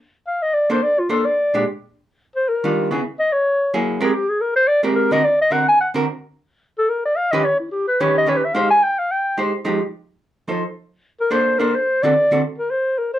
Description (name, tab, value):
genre	jazz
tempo	217 BPM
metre	4/4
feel	swing 59% on 8ths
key	unclear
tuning	A4 = 443 Hz
part	mellow clarinet	melody	0.3-13.2 s	Fb4 to Ab5	-17 LUFS	left 1 dB	none
part	archtop guitar, miked and amplified	accompaniment	0.7-12.4 s	Bb2 to C5	-20 LUFS	right 2 dB	none
room	moderate club ambience, RT60 0.5 s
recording	none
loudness	-16 LUFS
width	side -12 dB against mid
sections	0.0-1.9 A section; 1.9-10.7 B section; 10.7-13.2 A section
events	none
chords	0.0 Bbmaj9; 1.4 Bb6; 1.9 Ebmaj9; 3.0 N.C.; 3.6 Gb9; 4.1 Abmaj9; 5.2 Daug7; 6.3 Ebaug7; 8.5 Abmaj7; 9.6 Fm9; 10.2 F7; 10.7 Bbmaj9; 11.9 D7